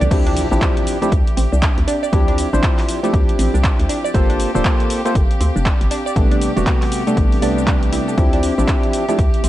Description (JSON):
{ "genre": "deep house", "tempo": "119 BPM", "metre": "4/4", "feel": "swing 61% on 16ths", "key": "D minor", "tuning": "A4 = 440 Hz", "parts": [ { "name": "analog pluck", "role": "arpeggios", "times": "0.0-9.5 s", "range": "A3 to D5", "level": "-26 LUFS", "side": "right 3 dB", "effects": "chorus, phaser, sidechain pumping, analog delay" }, { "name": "percussive organ stab", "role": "stabs", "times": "0.0-9.2 s", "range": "C3 to C5", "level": "-20 LUFS", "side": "equal", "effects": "wide subtle chorus, cassette tape, sidechain pumping, analog delay" }, { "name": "hollow knocking FM bass", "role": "bass", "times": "0.0-9.5 s", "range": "D1 to D2", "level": "-19 LUFS", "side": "equal", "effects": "sidechain pumping" }, { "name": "deep house drum kit", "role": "drums", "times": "0.0-9.5 s", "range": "cabasa, crash cymbal, handclaps, hi-hat", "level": "-26 LUFS", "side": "equal", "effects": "overdrive" }, { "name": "swell and impact", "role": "sound effects", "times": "0.0-2.1 s", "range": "none", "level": "-30 LUFS", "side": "equal", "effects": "none" }, { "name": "clear chamber violin section", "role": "texture", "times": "0.0-9.5 s", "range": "G4", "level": "-31 LUFS", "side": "equal", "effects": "sidechain pumping" }, { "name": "warbly tape-like pad", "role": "texture", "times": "0.0-9.5 s", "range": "C4 to A5", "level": "-28 LUFS", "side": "equal", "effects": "chorus, built-in reverb, sidechain pumping" }, { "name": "electronic kick drum", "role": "drums", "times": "0.1-9.3 s", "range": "none", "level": "-17 LUFS", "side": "equal", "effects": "overdrive" } ], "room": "digital ambience", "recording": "nothing above 11.0 kHz", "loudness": "-14 LUFS", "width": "side -14 dB against mid", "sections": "0.1-9.5 A section", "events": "drop 0.1-9.5; impact 0.1-2.1", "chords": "0.1 Dm11; 4.1 Gm11; 6.2 Am11; 8.2 Dm11", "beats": "| 0.11 0.61 1.12 1.62 | 2.13 2.63 3.14 3.64 | 4.14 4.65 5.15 5.66 | 6.16 6.67 7.17 7.67 | 8.18 8.68 9.19" }